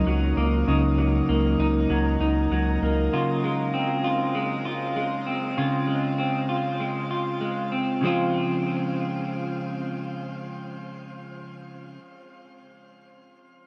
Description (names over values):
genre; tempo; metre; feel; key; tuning
dream pop; 98 BPM; 4/4; straight; Db major; A4 = 440 Hz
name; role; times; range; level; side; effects
clean electric guitar; arpeggios; 0.0-12.0 s; Db3 to F4; -26 LUFS; equal; lush chorus, delay
saturated sub bass; bass; 0.0-3.1 s; Db2; -27 LUFS; equal; none
room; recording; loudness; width
wet shimmer reverb, RT60 8.1 s; none; -25 LUFS; mono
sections
0.0-8.0 A section; 8.0-10.5 B section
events
none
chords
0.0 Ebm7/Db; 3.1 Dbmaj7